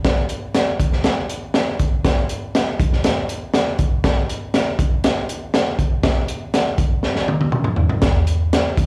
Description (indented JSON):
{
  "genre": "soul",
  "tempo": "120 BPM",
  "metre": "4/4",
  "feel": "straight",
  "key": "none",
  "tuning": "none",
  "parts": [
    { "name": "crunchy breakbeat drum kit", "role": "drums", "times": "0.0-8.9 s", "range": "hi-hat, kick drum, snare drum, toms", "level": "-20 LUFS", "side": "equal", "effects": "none" }
  ],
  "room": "light reverb",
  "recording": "live gig heard through the venue's PA, club reverb",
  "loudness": "-20 LUFS",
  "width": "mono",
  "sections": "0.0-8.0 A section",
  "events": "drum fill 7.0-8.0",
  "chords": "none"
}